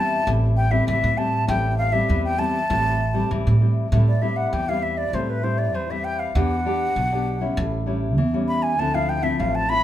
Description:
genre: samba and choro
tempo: 99 BPM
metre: 4/4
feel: straight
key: A minor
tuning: A4 = 440 Hz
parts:
  - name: mellow silver concert flute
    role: melody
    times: 0.0-9.8 s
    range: B4 to B5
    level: -24 LUFS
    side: equal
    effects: none
  - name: nylon-string guitar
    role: accompaniment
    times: 0.0-9.8 s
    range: A2 to G4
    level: -25 LUFS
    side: left 3 dB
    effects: none
  - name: upright bass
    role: bass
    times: 0.0-9.8 s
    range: A1 to A2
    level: -22 LUFS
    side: right 1 dB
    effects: none
room: moderate large studio reverb, RT60 1.1 s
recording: minimal, uncompressed stereo recording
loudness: -19 LUFS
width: side -12 dB against mid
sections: 0.0-3.9 A section; 3.9-9.8 B section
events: flute solo 3.9-9.8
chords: 0.0 Am7; 6.4 Em7; 7.6 A7; 8.8 Dm9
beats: 0.27 0.88 | 1.49 2.10 2.70 3.31 | 3.92 4.53 5.14 5.75 | 6.36 6.96 7.57 8.18 | 8.79 9.40

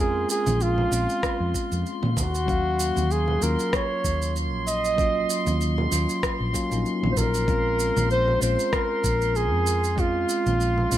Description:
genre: sunset chillout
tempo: 96 BPM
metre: 4/4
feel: swing 55% on 16ths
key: Bb minor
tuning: A4 = 439 Hz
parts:
  - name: trumpet with bucket mute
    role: melody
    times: 0.0-11.0 s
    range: F4 to Eb5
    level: -25 LUFS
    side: right 1 dB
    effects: ping-pong delay
  - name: bell-like tine electric piano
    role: accompaniment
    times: 0.0-11.0 s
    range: Gb3 to F5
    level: -30 LUFS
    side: moving between left 5 dB and right 5 dB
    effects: auto-pan, low-pass filter, ping-pong delay
  - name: hollow-body short-scale fingered electric bass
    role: bass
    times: 0.0-11.0 s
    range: Bb1 to Bb2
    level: -26 LUFS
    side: equal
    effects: tube saturation
  - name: drifting glass-harmonics texture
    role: texture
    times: 0.0-11.0 s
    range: C6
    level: -33 LUFS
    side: equal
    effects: chorus, built-in reverb
  - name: electronic shaker and rim click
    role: drums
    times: 0.3-11.0 s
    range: none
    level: -31 LUFS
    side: right 1 dB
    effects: none
  - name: congas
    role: percussion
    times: 0.5-10.9 s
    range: none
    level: -33 LUFS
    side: right 4 dB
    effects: none
  - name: electronic kick drum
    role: drums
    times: 1.2-10.1 s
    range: none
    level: -28 LUFS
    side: equal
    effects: none
room: light reverb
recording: none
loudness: -21 LUFS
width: side -12 dB against mid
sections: 0.0-11.0 A section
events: none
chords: 0.0 Bbm9; 2.2 Ebm9; 7.5 Bbm9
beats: 0.61 1.23 1.86 | 2.48 3.11 3.73 4.36 | 4.98 5.61 6.23 6.86 | 7.48 8.11 8.73 9.36 | 9.98 10.61

